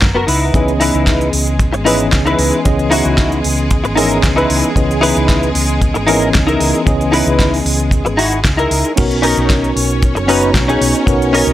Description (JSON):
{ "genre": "nu-disco, nu disco", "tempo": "114 BPM", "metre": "4/4", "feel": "straight", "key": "C# dorian", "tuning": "A4 = 440 Hz", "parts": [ { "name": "clear studio string section", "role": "sustained chords", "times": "0.0-11.5 s", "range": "G#3 to A#5", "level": "-24 LUFS", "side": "equal", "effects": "sidechain pumping" }, { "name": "hollow-body short-scale fingered electric bass", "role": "bass", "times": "0.0-11.5 s", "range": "F#1 to C#2", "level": "-18 LUFS", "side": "equal", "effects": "none" }, { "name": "kick drum", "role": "drums", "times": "0.0-11.2 s", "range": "none", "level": "-15 LUFS", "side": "equal", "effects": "small room reverb" }, { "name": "pop drum kit", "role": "drums", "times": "0.0-11.5 s", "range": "crash cymbal, hi-hat, snare drum", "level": "-19 LUFS", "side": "right 1 dB", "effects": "small room reverb" }, { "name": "direct-recorded clean electric guitar", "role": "riff", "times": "0.1-11.5 s", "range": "B3 to B4", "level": "-16 LUFS", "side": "left 1 dB", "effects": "ensemble chorus, low-pass filter" }, { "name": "tine electric piano", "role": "accompaniment", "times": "0.5-11.5 s", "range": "E3 to A#5", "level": "-17 LUFS", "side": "equal", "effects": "medium stereo tremolo, sidechain pumping, analog delay" } ], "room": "small room ambience", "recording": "dry, gritty hardware recording", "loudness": "-11 LUFS", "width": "side -13 dB against mid", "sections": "0.0-11.5 A section", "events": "none", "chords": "0.3 C#m9; 9.0 Bmaj9" }